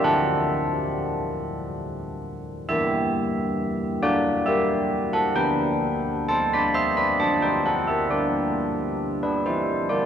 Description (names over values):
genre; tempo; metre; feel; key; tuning
classical, tune for church bells; 67 BPM; 3/4; straight; G major; A4 = 440 Hz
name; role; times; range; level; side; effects
carillon bells; solo; 0.0-10.1 s; D3 to C6; -21 LUFS; equal; none
room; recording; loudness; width
wet cathedral reverb, RT60 5.0 s; none; -21 LUFS; side -8 dB against mid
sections
0.0-10.1 A section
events
none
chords
0.0 D; 2.7 Em; 5.3 G/D; 7.2 D; 8.1 G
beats
| 0.04 0.92 1.80 | 2.68 3.55 4.44 | 5.35 6.27 7.18 | 8.10 9.01 9.90